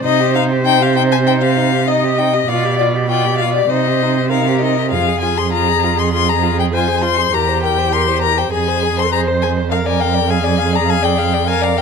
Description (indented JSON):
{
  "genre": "quick classical-period movement for string quartet",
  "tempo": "100 BPM",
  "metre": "4/4",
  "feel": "rubato",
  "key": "C minor",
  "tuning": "A4 = 440 Hz",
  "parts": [
    { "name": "rich violin", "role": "melody", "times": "0.0-11.8 s", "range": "D5 to C6", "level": "-17 LUFS", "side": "left 12 dB", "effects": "none" },
    { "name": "rich violin", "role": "second line", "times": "0.0-11.8 s", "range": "Eb4 to F5", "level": "-22 LUFS", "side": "left 5 dB", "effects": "none" },
    { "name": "clear viola", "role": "accompaniment", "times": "0.0-11.8 s", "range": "G4 to Eb5", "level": "-21 LUFS", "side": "right 2 dB", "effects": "none" },
    { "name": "clear cello", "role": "bass", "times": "0.0-11.8 s", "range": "E2 to C3", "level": "-17 LUFS", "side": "right 6 dB", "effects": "none" }
  ],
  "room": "light reverb",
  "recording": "close, detailed microphones",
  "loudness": "-13 LUFS",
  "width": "side -5 dB against mid",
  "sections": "0.0-11.8 A section",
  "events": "none",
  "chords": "0.0 Cm; 2.5 G7/B; 3.7 Cm; 4.9 Fm; 7.3 C7/E; 8.5 Fm; 9.7 Ddim/F"
}